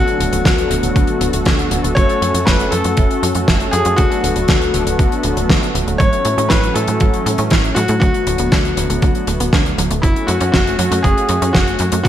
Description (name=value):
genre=italo disco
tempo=119 BPM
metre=4/4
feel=straight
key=unclear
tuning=A4 = 435 Hz
part: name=bright baby grand piano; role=melody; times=0.0-12.1 s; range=E4 to C#5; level=-20 LUFS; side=left 2 dB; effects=ping-pong delay
part: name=warm analog pad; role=sustained chords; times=0.0-12.1 s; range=D3 to F#4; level=-22 LUFS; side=equal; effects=chorus
part: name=mellow synth brass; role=stabs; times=0.0-5.7 s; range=A3 to A4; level=-22 LUFS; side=left 2 dB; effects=chorus, phaser
part: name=tight sequencer bass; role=bass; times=0.0-12.1 s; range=D1 to A2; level=-19 LUFS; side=equal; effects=none
part: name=damped 70s drum kit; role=drums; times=0.1-12.1 s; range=hi-hat, snare drum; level=-20 LUFS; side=left 1 dB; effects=studio ambience, gated reverb
part: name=electronic kick drum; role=drums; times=0.5-12.1 s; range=none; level=-16 LUFS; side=right 1 dB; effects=studio ambience
part: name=wide unison pluck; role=arpeggios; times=6.0-12.1 s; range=F#3 to F#4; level=-24 LUFS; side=right 2 dB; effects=ping-pong delay
room=moderate plate reverb, RT60 1.7 s, small room ambience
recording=bright 1980s-style digital production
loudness=-13 LUFS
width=side -11 dB against mid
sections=0.0-12.1 A section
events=none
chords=0.0 D6; 2.0 F#m; 4.0 D6; 6.0 A6; 8.0 D6; 10.0 F#m